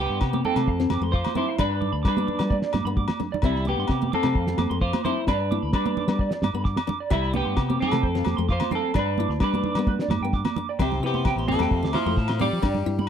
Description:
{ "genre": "highlife guitar band", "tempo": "130 BPM", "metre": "4/4", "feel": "straight", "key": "C major", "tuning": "A4 = 440 Hz", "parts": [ { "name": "semi-hollow electric guitar", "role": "melody", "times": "0.0-13.1 s", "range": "G3 to D5", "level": "-27 LUFS", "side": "equal", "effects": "wide subtle chorus" }, { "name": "fingerpicked steel-string acoustic guitar", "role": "accompaniment", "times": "0.0-13.1 s", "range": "A3 to E4", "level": "-32 LUFS", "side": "left 9 dB", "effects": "none" }, { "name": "electric guitar through a small old amp", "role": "arpeggios", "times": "0.0-13.1 s", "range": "B4 to D6", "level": "-32 LUFS", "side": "right 7 dB", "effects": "tremolo, tape echo" }, { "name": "fingered electric bass", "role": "bass", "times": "0.0-13.1 s", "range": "A1 to G3", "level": "-27 LUFS", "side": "equal", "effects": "none" }, { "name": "cloth-damped thuddy drum kit", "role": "drums", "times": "0.2-12.8 s", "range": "kick drum, snare drum", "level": "-26 LUFS", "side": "equal", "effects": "none" }, { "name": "agogo bells", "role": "percussion", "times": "0.2-13.1 s", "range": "none", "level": "-35 LUFS", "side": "left 10 dB", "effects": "none" }, { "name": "congas", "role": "percussion", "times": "0.3-13.1 s", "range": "none", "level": "-30 LUFS", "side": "right 8 dB", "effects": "none" }, { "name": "raspy tenor saxophone", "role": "second line", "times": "10.8-13.1 s", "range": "C3 to G3", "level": "-34 LUFS", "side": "left 7 dB", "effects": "none" } ], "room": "light reverb", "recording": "dry, close 1970s-style studio recording", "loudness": "-22 LUFS", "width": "side -8 dB against mid", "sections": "0.0-10.8 A section; 10.8-13.1 B section", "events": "drum fill 3.0-3.4", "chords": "0.0 C5; 0.7 F; 1.6 G; 3.4 C; 4.4 F; 5.3 G; 7.1 C; 8.0 F; 9.0 G; 10.8 C; 11.7 F" }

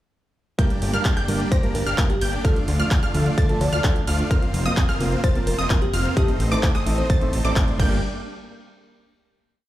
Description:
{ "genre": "EDM, festival progressive house", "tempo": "129 BPM", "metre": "4/4", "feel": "straight", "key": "G minor", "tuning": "A4 = 440 Hz", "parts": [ { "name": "warm grand piano", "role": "accompaniment", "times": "0.6-8.0 s", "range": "G2 to D5", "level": "-29 LUFS", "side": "right 2 dB", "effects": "sidechain pumping, digital delay" }, { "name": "wide unison pluck", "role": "arpeggios", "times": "0.6-8.0 s", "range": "D6 to Bb6", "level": "-30 LUFS", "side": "right 1 dB", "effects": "sidechain pumping, digital delay" }, { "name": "supersaw chords", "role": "riff", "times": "0.6-8.0 s", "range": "A3 to Bb5", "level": "-28 LUFS", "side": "equal", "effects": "sidechain pumping, digital delay" }, { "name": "fat analog bass", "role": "bass", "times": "0.6-8.0 s", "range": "F1 to D2", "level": "-24 LUFS", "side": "equal", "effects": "sidechain pumping" }, { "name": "big-room dance drum kit", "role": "drums", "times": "0.6-7.9 s", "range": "crash cymbal, handclaps, hi-hat, rim click", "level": "-30 LUFS", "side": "equal", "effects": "none" }, { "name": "electronic kick drum", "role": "drums", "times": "0.6-7.9 s", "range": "none", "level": "-21 LUFS", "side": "equal", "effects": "none" }, { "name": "bell-like FM electric piano", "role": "melody", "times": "1.5-7.3 s", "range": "G4 to D5", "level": "-30 LUFS", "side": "equal", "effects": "chorus, digital delay" } ], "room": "light reverb, digital ambience", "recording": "played on a big sound system in a bare room, large studio reverb", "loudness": "-18 LUFS", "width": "side -14 dB against mid", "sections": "0.6-8.0 drop; 8.0-9.7 final hit", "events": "drop 0.6-8.0", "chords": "0.6 Gm; 2.4 Dm; 4.3 Fsus4; 6.2 Adim; 7.8 Gm; 8.0 N.C." }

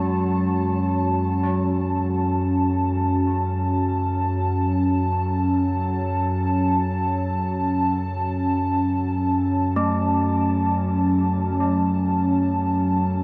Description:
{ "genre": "dark ambient drone", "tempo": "free time", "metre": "none", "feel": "none", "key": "F# minor", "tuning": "A4 = 440 Hz", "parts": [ { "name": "dark analog pad", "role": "sustained chords", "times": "0.0-13.2 s", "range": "F#3 to A5", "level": "-24 LUFS", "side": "equal", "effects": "chorus, phaser, shimmer reverb" }, { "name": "gamelan-type bronze metallophone", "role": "arpeggios", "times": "0.0-13.2 s", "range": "G#3 to A3", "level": "-33 LUFS", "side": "equal", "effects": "tape echo, shimmer reverb" }, { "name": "deep rumbling drone", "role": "drone", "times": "0.0-13.2 s", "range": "F#2 to F#3", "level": "-27 LUFS", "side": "equal", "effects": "built-in reverb" } ], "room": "wet huge ambient reverb, RT60 7.9 s", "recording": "cassette tape", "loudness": "-22 LUFS", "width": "mono", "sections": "0.0-13.2 A section", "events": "none", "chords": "0.0 F#m" }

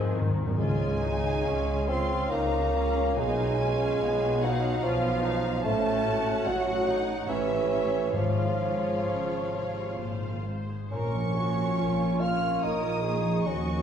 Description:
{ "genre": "classical", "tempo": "61-75 BPM", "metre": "3/4", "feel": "rubato", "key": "Db major", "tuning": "A4 = 439 Hz", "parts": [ { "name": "rich studio violin section", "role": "melody", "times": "0.0-13.8 s", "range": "C5 to Ab5", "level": "-42 LUFS", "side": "left 4 dB", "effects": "none" }, { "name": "rich studio violin section", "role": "second line", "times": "0.0-13.8 s", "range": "Ab4 to F6", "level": "-36 LUFS", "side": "equal", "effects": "none" }, { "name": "warm bassoon", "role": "accompaniment", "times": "0.0-13.8 s", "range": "Eb3 to F4", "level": "-29 LUFS", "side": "right 2 dB", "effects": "none" }, { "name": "warm studio viola section", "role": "accompaniment", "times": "0.0-13.8 s", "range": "Eb3 to Bb4", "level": "-36 LUFS", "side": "equal", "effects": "none" }, { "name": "warm French horn section", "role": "sustained chords", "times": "0.0-13.8 s", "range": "Ab3 to Db5", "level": "-35 LUFS", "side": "left 1 dB", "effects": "none" }, { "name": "concert harp", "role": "arpeggios", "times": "0.0-13.8 s", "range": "Ab2 to Db5", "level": "-33 LUFS", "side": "left 2 dB", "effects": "none" }, { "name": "rich studio double bass section", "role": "bass", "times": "0.0-13.8 s", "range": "Ab1 to Eb2", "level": "-34 LUFS", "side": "right 2 dB", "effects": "none" }, { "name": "warm studio cello section", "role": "bass", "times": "0.0-13.8 s", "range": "Eb2 to Ab3", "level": "-36 LUFS", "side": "right 2 dB", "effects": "none" }, { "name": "timpani", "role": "percussion", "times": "0.0-1.8, 8.1-9.5 s", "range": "Ab2 to Db3", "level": "-31 LUFS", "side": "left 1 dB", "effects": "none" } ], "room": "wet recital hall reverb, RT60 1.4 s", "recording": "recorded in a church or concert hall", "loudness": "-25 LUFS", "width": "side -8 dB against mid", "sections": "0.6-13.8 A section", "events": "timpani fill 0.0-0.6", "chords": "0.0 Ab; 0.6 Db; 3.2 Db7/Cb; 5.6 Gbm/A; 7.3 A7; 8.2 Db/Ab; 10.0 Ab; 10.9 Bbm" }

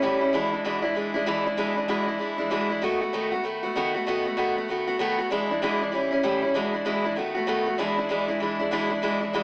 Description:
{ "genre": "rock", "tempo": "193 BPM", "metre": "4/4", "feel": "swing 62% on 8ths", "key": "E mixolydian", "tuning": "A4 = 440 Hz", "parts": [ { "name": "picked steel-string acoustic guitar", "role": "solo", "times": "0.0-9.4 s", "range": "E2 to F#4", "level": "-26 LUFS", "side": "equal", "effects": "slapback echo" } ], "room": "moderate small room ambience, RT60 0.5 s", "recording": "AM radio sound", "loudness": "-26 LUFS", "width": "mono", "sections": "0.0-7.8 A section; 7.8-9.4 B section", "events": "none", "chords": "0.3 E7; 2.8 B7; 5.3 E7; 5.9 A7; 6.6 E7; 7.2 B7; 7.8 E7" }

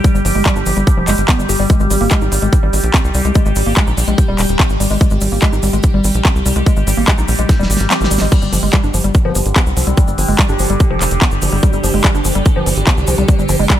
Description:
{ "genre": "psychedelic trance", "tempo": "145 BPM", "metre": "4/4", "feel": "straight", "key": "unclear", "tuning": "A4 = 439 Hz", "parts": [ { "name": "overtone-sweeping drone", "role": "sustained chords", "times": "0.0-13.8 s", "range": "D3 to G4", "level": "-20 LUFS", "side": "equal", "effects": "chorus, built-in reverb, sidechain pumping" }, { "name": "woody wave-folded pluck", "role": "riff", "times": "0.0-13.8 s", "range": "F3 to G4", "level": "-20 LUFS", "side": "moving between left 4 dB and right 3 dB", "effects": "chorus, auto-pan, sidechain pumping, dub echo" }, { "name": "big-room dance drum kit", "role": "drums", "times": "0.0-13.8 s", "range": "crash cymbal, handclaps, hi-hat, snare drum", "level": "-20 LUFS", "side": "equal", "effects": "none" }, { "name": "electronic kick drum", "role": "drums", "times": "0.0-13.8 s", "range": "none", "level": "-13 LUFS", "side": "equal", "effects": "none" }, { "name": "cabasa", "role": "percussion", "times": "0.0-13.8 s", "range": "none", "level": "-26 LUFS", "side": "left 3 dB", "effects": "none" }, { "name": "tight sequencer bass", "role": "bass", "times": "0.1-13.7 s", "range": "Eb1 to C2", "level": "-17 LUFS", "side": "equal", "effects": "none" }, { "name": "formant-sweep wobble bass", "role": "second line", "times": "9.3-13.3 s", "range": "G3 to B3", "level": "-29 LUFS", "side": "right 3 dB", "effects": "none" } ], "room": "little or no reverb", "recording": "none", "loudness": "-11 LUFS", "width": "side -12 dB against mid", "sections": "0.0-13.8 A section", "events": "drum fill 7.5-8.3; kick drops out 7.9-8.3", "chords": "0.0 G5; 1.7 Ab5; 8.3 G5" }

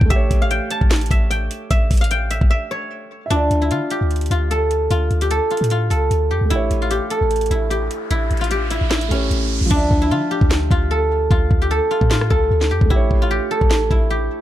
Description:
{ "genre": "hip hop, trap", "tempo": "150 BPM", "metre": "4/4", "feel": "half-time", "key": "D harmonic minor", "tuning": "A4 = 440 Hz", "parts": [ { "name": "guzheng", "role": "melody", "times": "0.0-14.4 s", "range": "C#4 to A5", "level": "-20 LUFS", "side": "equal", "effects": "none" }, { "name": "dark concert grand piano", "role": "accompaniment", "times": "0.0-14.4 s", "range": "F3 to E5", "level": "-29 LUFS", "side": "right 3 dB", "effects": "none" }, { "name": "clean 808-style bass", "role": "bass", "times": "0.0-14.3 s", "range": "A1 to D3", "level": "-20 LUFS", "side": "equal", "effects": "none" }, { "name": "trap drum kit", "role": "drums", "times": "0.0-14.0 s", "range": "crash cymbal, hi-hat, kick drum, rim click, snare drum", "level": "-18 LUFS", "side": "equal", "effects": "none" }, { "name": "riser", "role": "sound effects", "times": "7.5-9.7 s", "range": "none", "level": "-30 LUFS", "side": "right 2 dB", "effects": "none" } ], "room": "little or no reverb", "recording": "dark, warm production", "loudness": "-16 LUFS", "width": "side -13 dB against mid", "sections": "0.0-3.3 A section; 3.3-9.7 B section; 9.7-14.4 C section", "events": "break 2.5-3.3; riser 7.5-9.7; hi-hats muted 9.7-14.4", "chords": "0.1 A7; 3.3 Dmadd9; 6.5 A7; 9.7 Dmadd9; 12.9 A7" }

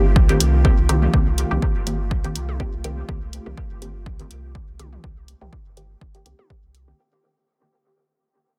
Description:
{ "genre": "dub techno", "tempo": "123 BPM", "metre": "4/4", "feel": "swing 54% on 16ths", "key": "C dorian", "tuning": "A4 = 440 Hz", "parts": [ { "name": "warbly tape-like pad", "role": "sustained chords", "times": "0.0-7.0 s", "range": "Eb3 to F4", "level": "-34 LUFS", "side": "equal", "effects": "chorus, built-in reverb, sidechain pumping" }, { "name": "filtered dub chord stab", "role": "stabs", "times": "0.0-7.0 s", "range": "Eb3 to G4", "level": "-28 LUFS", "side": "equal", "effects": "phaser, sidechain pumping, dub echo" }, { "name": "warm sub bass", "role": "bass", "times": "0.0-6.9 s", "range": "G1 to C2", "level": "-24 LUFS", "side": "equal", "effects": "tube saturation, sidechain pumping" }, { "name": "electronic kick drum", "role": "drums", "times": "0.2-6.6 s", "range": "none", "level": "-22 LUFS", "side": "equal", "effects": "overdrive" }, { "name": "electronic hi-hat", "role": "drums", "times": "0.3-6.9 s", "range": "none", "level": "-26 LUFS", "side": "equal", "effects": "overdrive" }, { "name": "electronic toms", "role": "percussion", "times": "0.9-6.5 s", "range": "none", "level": "-34 LUFS", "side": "equal", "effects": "overdrive, sidechain pumping on toms, dub echo" } ], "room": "little or no reverb", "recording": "dense, heavily limited modern master", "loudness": "-20 LUFS", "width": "mono", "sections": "0.0-7.0 A section", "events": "fade-out 0.0-7.0; filter sweep on synth stab 0.0-7.0", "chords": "0.0 Cm7" }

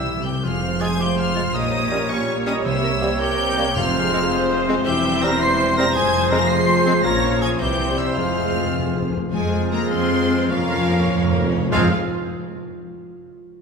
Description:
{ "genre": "classical, dramatic, fast romantic movement for symphony orchestra", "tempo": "95-110 BPM (dotted quarters)", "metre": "6/8", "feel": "straight", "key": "F minor", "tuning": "A4 = 442 Hz", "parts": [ { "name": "bright symphonic violin section", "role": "melody", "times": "0.0-11.9 s", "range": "F5 to C7", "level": "-26 LUFS", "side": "left 2 dB", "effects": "none" }, { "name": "bright large flute ensemble", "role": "second line", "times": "0.0-11.9 s", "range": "Db5 to F6", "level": "-29 LUFS", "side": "left 1 dB", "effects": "none" }, { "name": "clear clarinet", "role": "second line", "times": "0.0-11.9 s", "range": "Bb3 to C5", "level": "-33 LUFS", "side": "left 1 dB", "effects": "none" }, { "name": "mellow oboe", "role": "second line", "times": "0.0-11.9 s", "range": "Db4 to Db5", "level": "-30 LUFS", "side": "right 3 dB", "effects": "none" }, { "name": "warm symphonic violin section", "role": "second line", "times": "0.0-11.9 s", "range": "C4 to F5", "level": "-33 LUFS", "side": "left 2 dB", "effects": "none" }, { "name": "rich studio viola section", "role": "accompaniment", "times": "0.0-11.9 s", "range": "G3 to E5", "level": "-30 LUFS", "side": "right 1 dB", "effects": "none" }, { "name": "warm bassoon", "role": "accompaniment", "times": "0.0-11.9 s", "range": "E3 to Bb3", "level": "-30 LUFS", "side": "right 2 dB", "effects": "none" }, { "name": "dark French horn section", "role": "sustained chords", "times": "0.0-11.9 s", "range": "F3 to Ab4", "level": "-26 LUFS", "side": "left 4 dB", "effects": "none" }, { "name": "warm trombone section", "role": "sustained chords", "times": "0.0-11.9 s", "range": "Bb2 to Db4", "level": "-32 LUFS", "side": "right 2 dB", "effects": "none" }, { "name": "concert harp", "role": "arpeggios", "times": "0.0-12.9 s", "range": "E2 to Bb5", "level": "-28 LUFS", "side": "left 6 dB", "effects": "none" }, { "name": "dark trumpet section", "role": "stabs", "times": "0.0-11.9 s", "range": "G4 to Db5", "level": "-27 LUFS", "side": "left 2 dB", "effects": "none" }, { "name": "rich symphonic cello section", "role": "bass", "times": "0.0-11.9 s", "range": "E2 to C4", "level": "-27 LUFS", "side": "right 4 dB", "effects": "none" }, { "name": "rich symphonic double bass section", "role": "bass", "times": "0.0-11.9 s", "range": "E1 to F2", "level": "-27 LUFS", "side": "right 4 dB", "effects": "none" }, { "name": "timpani", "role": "percussion", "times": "0.0-0.4, 2.7-4.3, 8.2-11.9 s", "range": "F2 to C3", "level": "-29 LUFS", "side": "right 1 dB", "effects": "none" } ], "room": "wet concert hall reverb, RT60 2.4 s", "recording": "minimal, uncompressed stereo recording", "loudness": "-17 LUFS", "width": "side -5 dB against mid", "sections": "0.4-9.3 A section; 9.3-11.7 B section; 11.7-12.9 C section", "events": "timpani fill 0.0-0.4, 8.2-9.3, 10.5-11.7", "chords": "0.4 Fm; 1.6 Gdim/Bb; 2.7 C7; 3.8 Fm; 4.9 C/E; 6.0 Fm; 7.1 Bbm; 7.6 C; 8.2 Fm; 10.5 Bbm/F; 11.7 Fm" }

